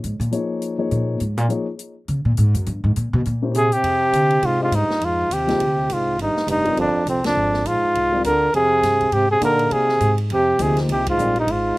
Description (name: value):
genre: modal jazz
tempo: 204 BPM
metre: 4/4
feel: swing 60% on 8ths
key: F dorian from 3.8 s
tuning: A4 = 441 Hz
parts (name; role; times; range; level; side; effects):
- upright bass; bass; 0.0-11.8 s; F1 to D3; -22 LUFS; equal; none
- open jazz drum kit; drums; 0.0-11.6 s; hi-hat, kick drum, ride cymbal, snare drum; -34 LUFS; equal; none
- dark baby grand piano; accompaniment; 0.3-11.3 s; F3 to F5; -25 LUFS; left 4 dB; slapback echo
- mellow trombone; second line; 3.5-11.8 s; F2 to D3; -24 LUFS; right 3 dB; none
- breathy trumpet; melody; 3.6-11.8 s; C4 to Bb4; -18 LUFS; equal; none
room: little or no reverb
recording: recorded outdoors, with no room sound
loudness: -17 LUFS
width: side -20 dB against mid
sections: 0.0-3.8 A section; 3.8-11.8 B section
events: upright bass solo 0.0-3.8; band accent 7.2, 11.0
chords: 0.0 Eb7sus2; 2.7 C7(no3); 3.8 Fm69